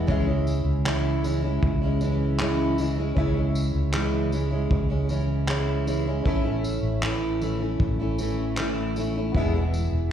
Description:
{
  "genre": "acoustic pop",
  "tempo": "78 BPM",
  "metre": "4/4",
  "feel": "straight",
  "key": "unclear",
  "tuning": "A4 = 440 Hz",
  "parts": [
    { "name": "fingerpicked plugged-in steel-string acoustic guitar", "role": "accompaniment", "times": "0.0-10.1 s", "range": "E2 to E4", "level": "-26 LUFS", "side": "equal", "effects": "double-tracked left and right, slapback echo" },
    { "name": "warm upright piano", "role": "accompaniment", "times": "0.0-10.1 s", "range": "B3 to E5", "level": "-37 LUFS", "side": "left 4 dB", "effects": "slapback echo" },
    { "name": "fingered electric bass", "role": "bass", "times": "0.0-10.1 s", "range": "E1 to C#2", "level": "-26 LUFS", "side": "equal", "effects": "none" },
    { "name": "cloth-damped thuddy drum kit", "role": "drums", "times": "0.1-9.9 s", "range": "handclaps, kick drum, tambourine", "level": "-29 LUFS", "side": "equal", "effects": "none" }
  ],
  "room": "light reverb",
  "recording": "live gig heard through the venue's PA, recital hall reverb",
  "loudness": "-22 LUFS",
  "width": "side -9 dB against mid",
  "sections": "0.0-10.1 A section",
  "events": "none",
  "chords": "0.1 C#m; 6.3 A; 9.3 E"
}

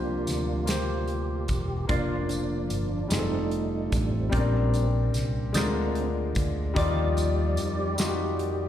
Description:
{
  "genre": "slow gospel",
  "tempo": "49 BPM (dotted quarters)",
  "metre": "6/8",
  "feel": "straight",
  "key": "Bb major",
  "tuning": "A4 = 440 Hz",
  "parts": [
    { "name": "clear grand piano", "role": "accompaniment", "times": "0.0-8.7 s", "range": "Bb2 to D5", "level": "-30 LUFS", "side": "left 4 dB", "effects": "slapback echo" },
    { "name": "mellow French horn section", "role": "sustained chords", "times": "0.0-8.7 s", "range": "Eb3 to D5", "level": "-39 LUFS", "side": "left 1 dB", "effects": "none" },
    { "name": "percussive tonewheel organ", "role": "sustained chords", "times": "0.0-8.7 s", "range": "F3 to D5", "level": "-32 LUFS", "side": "right 4 dB", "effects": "fast rotary speaker, chorus vibrato" },
    { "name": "fingered electric bass", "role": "bass", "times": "0.0-8.7 s", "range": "E1 to F2", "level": "-28 LUFS", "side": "equal", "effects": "none" },
    { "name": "modern studio drum kit", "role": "drums", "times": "0.3-8.6 s", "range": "hi-hat, kick drum, snare drum", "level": "-31 LUFS", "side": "equal", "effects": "none" },
    { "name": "tambourine", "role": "percussion", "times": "0.3-8.4 s", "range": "none", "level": "-39 LUFS", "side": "left 1 dB", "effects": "slapback echo" }
  ],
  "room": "light reverb, small room ambience",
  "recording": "live gig heard through the venue's PA, recital hall reverb",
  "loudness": "-24 LUFS",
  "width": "side -10 dB against mid",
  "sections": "0.0-8.7 A section",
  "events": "tonewheel organ solo 0.0-8.7",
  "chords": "0.0 C7sus4; 1.9 Bb/F; 3.1 F9; 4.3 Bb69; 5.5 Bb7/D; 6.8 Ebmaj9"
}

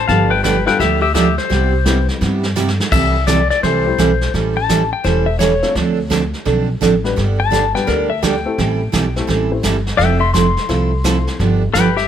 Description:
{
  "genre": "country, western swing",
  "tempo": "170 BPM",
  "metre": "4/4",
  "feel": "swing 64% on 8ths",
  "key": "C major",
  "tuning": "A4 = 440 Hz",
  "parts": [
    { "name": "pedal steel guitar", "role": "second line", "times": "0.0-12.1 s", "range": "G4 to C6", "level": "-18 LUFS", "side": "left 7 dB", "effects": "none" },
    { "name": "upright bass", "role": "bass", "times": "0.0-12.0 s", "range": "E1 to G2", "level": "-19 LUFS", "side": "equal", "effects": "none" },
    { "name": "dark upright piano", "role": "accompaniment", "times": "0.1-11.4 s", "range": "G3 to C5", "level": "-24 LUFS", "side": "left 5 dB", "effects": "none" },
    { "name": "picked steel-string acoustic guitar", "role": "accompaniment", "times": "0.1-11.9 s", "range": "C3 to A4", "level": "-18 LUFS", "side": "right 5 dB", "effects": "none" },
    { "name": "vintage brush drum kit", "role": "drums", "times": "0.1-12.1 s", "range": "brushed snare drum, crash cymbal, hi-hat, kick drum, snare drum", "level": "-22 LUFS", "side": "right 1 dB", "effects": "none" }
  ],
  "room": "light reverb",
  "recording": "none",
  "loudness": "-13 LUFS",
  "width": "side -9 dB against mid",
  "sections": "0.0-2.9 A section; 2.9-12.1 A section",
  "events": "pedal steel guitar solo 0.0-2.9, 2.9-12.1; drum fill 2.6-2.9",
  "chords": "0.1 G7; 1.5 Cmaj7; 2.9 C6; 4.3 A7; 5.8 Dm7; 7.2 G; 8.6 Am7; 10.0 Fmaj7; 11.4 G7"
}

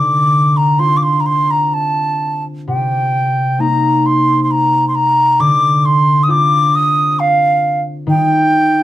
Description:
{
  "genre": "celtic folk",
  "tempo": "66 BPM",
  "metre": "3/4",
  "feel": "rubato",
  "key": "unclear",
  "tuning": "A4 = 440 Hz",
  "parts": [
    { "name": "bright baroque flute", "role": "melody", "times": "0.0-8.8 s", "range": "F5 to Eb6", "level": "-13 LUFS", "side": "equal", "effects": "none" },
    { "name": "concert harp", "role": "accompaniment", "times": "0.0-8.8 s", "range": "C3 to F4", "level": "-16 LUFS", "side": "left 1 dB", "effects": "none" }
  ],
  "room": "moderate studio ambience, RT60 0.5 s",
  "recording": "band playing live in one room",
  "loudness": "-11 LUFS",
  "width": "side -14 dB against mid",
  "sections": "0.0-8.8 A section",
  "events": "none",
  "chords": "0.0 Dm7; 2.7 Cm7; 5.4 Dm7; 8.1 Cm/Eb"
}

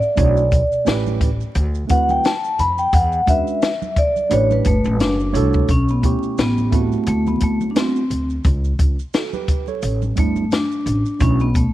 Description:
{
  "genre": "hip hop, jazz-hop",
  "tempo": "87 BPM",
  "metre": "4/4",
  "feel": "swing 57% on 16ths",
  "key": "unclear",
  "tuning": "A4 = 438 Hz",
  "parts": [
    { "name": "vibraphone with medium mallets", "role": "melody", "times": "0.0-11.7 s", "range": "A3 to B5", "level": "-19 LUFS", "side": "left 1 dB", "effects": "slapback echo" },
    { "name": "maracas and congas", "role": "percussion", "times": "0.0-11.7 s", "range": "none", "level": "-34 LUFS", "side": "right 6 dB", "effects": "none" },
    { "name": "tine electric piano", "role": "accompaniment", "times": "0.2-11.5 s", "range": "F#3 to C#5", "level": "-24 LUFS", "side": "right 9 dB", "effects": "medium stereo tremolo" },
    { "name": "upright bass", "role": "bass", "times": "0.2-11.6 s", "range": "F#1 to E#2", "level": "-20 LUFS", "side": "equal", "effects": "none" },
    { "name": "compact cocktail drum kit", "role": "drums", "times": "0.2-11.7 s", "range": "hi-hat, kick drum, snare drum", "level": "-20 LUFS", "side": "left 1 dB", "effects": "none" }
  ],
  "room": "studio reverb",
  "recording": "1960s-style stereo, vinyl crackle",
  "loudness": "-16 LUFS",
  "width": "side -14 dB against mid",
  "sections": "0.0-5.7 A section; 5.7-11.7 B section",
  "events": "vibraphone solo 0.0-5.7",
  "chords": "0.2 Bm11; 0.9 A9; 1.6 D13; 2.9 E13; 4.3 A9sus4; 5.0 F#m7; 5.7 B9sus4; 6.4 A9; 7.1 D13; 8.4 A13/C#; 9.8 A9sus4; 11.2 Bm11"
}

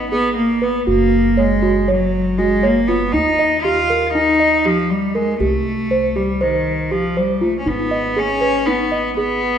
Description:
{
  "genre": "contemporary instrumental, chamber music in an uneven meter",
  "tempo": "239 BPM (eighths)",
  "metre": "9/8",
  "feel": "straight",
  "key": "unclear",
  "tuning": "A4 = 440 Hz",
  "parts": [
    { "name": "rich cello", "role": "melody", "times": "0.0-9.6 s", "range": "Eb3 to E#4", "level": "-17 LUFS", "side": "equal", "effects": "none" },
    { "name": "upright bass", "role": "bass", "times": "0.0-9.6 s", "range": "F#1 to D#2", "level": "-26 LUFS", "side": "left 1 dB", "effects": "none" },
    { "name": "small celesta", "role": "arpeggios", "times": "0.1-9.5 s", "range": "D#4 to D#5", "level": "-19 LUFS", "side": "right 2 dB", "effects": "none" }
  ],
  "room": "moderate scoring stage reverb, RT60 1.9 s",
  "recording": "minimal, uncompressed stereo recording",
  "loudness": "-14 LUFS",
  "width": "side -8 dB against mid",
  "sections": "0.0-9.6 A section",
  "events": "none",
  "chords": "0.0 G#m; 0.9 F#; 3.1 D#; 5.4 Cm; 7.7 G#m"
}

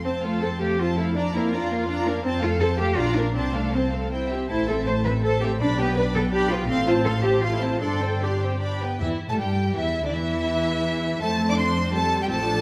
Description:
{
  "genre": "quick classical-period movement for string orchestra",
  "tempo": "148-170 BPM",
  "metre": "3/4",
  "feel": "rubato",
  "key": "F major",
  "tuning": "A4 = 438 Hz",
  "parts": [
    { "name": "clear symphonic violin section", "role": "melody", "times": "0.0-12.6 s", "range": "D5 to D6", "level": "-32 LUFS", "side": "equal", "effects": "none" },
    { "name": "rich symphonic cello section", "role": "bass", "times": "0.0-12.6 s", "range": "D3 to C5", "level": "-29 LUFS", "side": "equal", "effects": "none" },
    { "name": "rich symphonic double bass section", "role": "bass", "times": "0.0-12.6 s", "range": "G1 to A2", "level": "-29 LUFS", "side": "equal", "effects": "none" },
    { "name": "rich symphonic violin section", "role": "second line", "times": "0.1-12.6 s", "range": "D4 to F5", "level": "-33 LUFS", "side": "equal", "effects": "none" },
    { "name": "rich symphonic viola section", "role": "accompaniment", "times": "0.1-12.6 s", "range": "D3 to E4", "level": "-32 LUFS", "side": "equal", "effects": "none" }
  ],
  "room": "moderate scoring stage reverb, RT60 1.9 s",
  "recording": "none",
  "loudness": "-24 LUFS",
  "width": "mono",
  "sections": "0.0-9.0 A section; 9.0-12.6 B section",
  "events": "none",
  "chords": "0.0 F; 1.2 Bb/F; 2.2 F; 3.0 Bb; 3.4 F/C; 4.1 C; 4.5 Am; 5.6 G/B; 6.7 F/A; 7.8 Gsus4; 8.6 G; 9.0 Dsus24; 10.1 N.C.; 11.2 F"
}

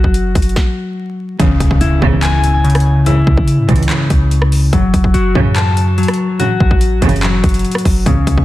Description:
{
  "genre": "hip hop, trap",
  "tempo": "144 BPM",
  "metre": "4/4",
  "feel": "half-time",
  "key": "unclear",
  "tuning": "A4 = 440 Hz",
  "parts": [
    { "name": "clean electric guitar", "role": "arpeggios", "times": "0.0-8.4 s", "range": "C#3 to A5", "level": "-15 LUFS", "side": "left 2 dB", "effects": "digital delay" },
    { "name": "clean 808-style bass", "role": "bass", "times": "0.0-8.4 s", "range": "F#1 to C#3", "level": "-15 LUFS", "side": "equal", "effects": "none" },
    { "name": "trap drum kit", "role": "drums", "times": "0.0-8.4 s", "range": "handclaps, hi-hat, kick drum, rim click, snare drum", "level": "-16 LUFS", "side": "equal", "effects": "overdrive" },
    { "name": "dark symphonic string section", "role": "stabs", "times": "1.4-8.2 s", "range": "G#1 to E3", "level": "-18 LUFS", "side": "right 3 dB", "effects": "none" },
    { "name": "impact", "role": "sound effects", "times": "1.4-3.1 s", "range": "none", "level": "-24 LUFS", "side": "right 1 dB", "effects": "none" },
    { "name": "ethereal airy pad", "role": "sustained chords", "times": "8.2-8.4 s", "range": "G#3 to C#5", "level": "-30 LUFS", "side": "right 3 dB", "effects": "ensemble chorus, built-in reverb, phaser" }
  ],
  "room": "digital ambience",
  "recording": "dense, heavily limited modern master, vinyl crackle",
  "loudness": "-10 LUFS",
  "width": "side -16 dB against mid",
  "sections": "0.0-1.4 A section; 1.4-8.4 B section",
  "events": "stop 0.6-1.4; impact 1.4-3.1",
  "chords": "0.0 F#m; 1.4 C#m; 4.7 F#m"
}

